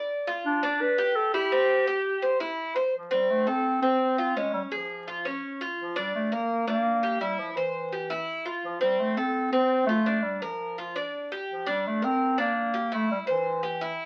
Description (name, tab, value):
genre	latin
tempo	168 BPM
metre	4/4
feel	straight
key	F major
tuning	A4 = 437 Hz
part	Cuban tres	arpeggios	0.0-14.1 s	C4 to D5	-30 LUFS	equal	none
part	mellow clarinet	melody	0.5-14.0 s	E3 to B4	-29 LUFS	equal	none
room	wet small room reverb, RT60 0.5 s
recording	very old 78 rpm record, vinyl crackle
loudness	-27 LUFS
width	mono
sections	0.0-2.9 A section; 2.9-14.1 B section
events	none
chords	0.1 G7; 1.5 C; 2.9 F; 4.4 Db; 5.8 Bb; 7.2 C; 8.6 F; 10.1 Bb; 11.5 Gm; 12.9 C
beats	| 0.10 0.46 0.81 1.16 | 1.52 1.87 2.23 2.58 | 2.94 3.29 3.65 4.01 | 4.36 4.72 5.08 5.43 | 5.79 6.14 6.50 6.86 | 7.21 7.57 7.93 8.28 | 8.64 9.00 9.35 9.71 | 10.07 10.42 10.78 11.14 | 11.49 11.85 12.21 12.56 | 12.92 13.28 13.63 13.99